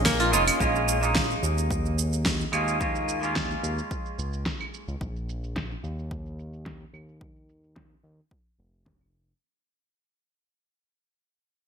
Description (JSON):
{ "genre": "organic downtempo", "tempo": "109 BPM", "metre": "4/4", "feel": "straight", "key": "unclear", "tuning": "A4 = 440 Hz", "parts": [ { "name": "clean electric guitar", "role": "accompaniment", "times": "0.0-5.0 s", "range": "Ab3 to F4", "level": "-28 LUFS", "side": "right 2 dB", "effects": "sidechain pumping, ping-pong delay" }, { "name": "bowed-like drone", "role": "sustained chords", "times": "0.0-0.6 s", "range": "Db4 to F5", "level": "-35 LUFS", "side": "right 1 dB", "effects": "built-in reverb, sidechain pumping" }, { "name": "kora", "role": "arpeggios", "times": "0.0-2.0 s", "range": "Bb3 to F4", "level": "-28 LUFS", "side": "equal", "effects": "ping-pong delay" }, { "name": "smooth synth bass", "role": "bass", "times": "0.0-9.3 s", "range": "F1 to Eb2", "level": "-30 LUFS", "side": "equal", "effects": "sidechain pumping" }, { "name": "deep house drum kit", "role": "drums", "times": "0.1-9.4 s", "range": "claves, hi-hat, shaker, snare drum", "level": "-29 LUFS", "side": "right 1 dB", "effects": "overdrive, low-pass filter on hats, low-pass filter on perc, low-pass filter on snare, gated reverb" }, { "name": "electronic kick drum", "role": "drums", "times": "0.1-9.0 s", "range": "none", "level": "-34 LUFS", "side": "equal", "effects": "overdrive" } ], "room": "moderate lush hall reverb, RT60 1.8 s, digital ambience", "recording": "bright 1980s-style digital production", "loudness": "-24 LUFS", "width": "side -7 dB against mid", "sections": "0.6-9.4 A section", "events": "fade-out 0.6-9.4; filter sweep on drum 0.6-9.4", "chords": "0.0 Dbadd9", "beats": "0.05 | 0.60 1.16 1.71 2.25 | 2.81 3.36 3.91 4.46 | 5.01 5.56 6.11 6.66 | 7.21 7.76 8.31 8.86" }